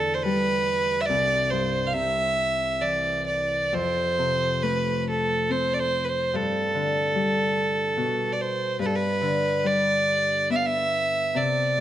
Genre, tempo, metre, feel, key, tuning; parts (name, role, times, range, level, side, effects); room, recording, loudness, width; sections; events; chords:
celtic folk, Celtic slow air; 66-74 BPM; 3/4; rubato; A4 = 440 Hz
warm fiddle; melody; 0.0-11.8 s; A4 to F5; -23 LUFS; right 2 dB
Celtic harp; accompaniment; 0.0-11.8 s; C2 to C4; -28 LUFS; left 3 dB
moderate recital hall reverb, RT60 1.8 s; -22 LUFS; side -12 dB against mid
0.0-11.8 A section
0.0 Em7; 1.1 C; 3.7 F; 6.3 Gadd9